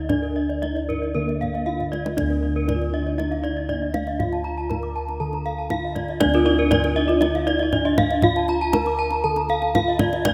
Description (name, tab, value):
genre	Balinese gamelan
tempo	119 BPM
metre	4/4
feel	straight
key	D pelog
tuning	A4 = 440 Hz
part	gamelan-type bronze metallophone	melody	0.0-10.3 s	Bb3 to Bb4	-29 LUFS	equal	none
part	gamelan-type bronze metallophone	arpeggios	0.0-10.3 s	Bb4 to D6	-35 LUFS	equal	none
part	gamelan-type bossed gongs	bass	0.0-10.3 s	D2 to F4	-29 LUFS	equal	none
part	gamelan-type bronze metallophone	arpeggios	0.1-10.3 s	Bb4 to Bb5	-28 LUFS	equal	none
part	kendang	percussion	0.1-10.3 s	none	-29 LUFS	equal	none
part	folk marimba with soft mallets	second line	2.7-8.7 s	A3 to F4	-28 LUFS	equal	none
room	moderate lush hall reverb, RT60 2.6 s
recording	rough home demo mix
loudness	-22 LUFS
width	mono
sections	0.0-2.2 A section; 2.2-10.3 B section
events	drum fill 1.8-2.2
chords	none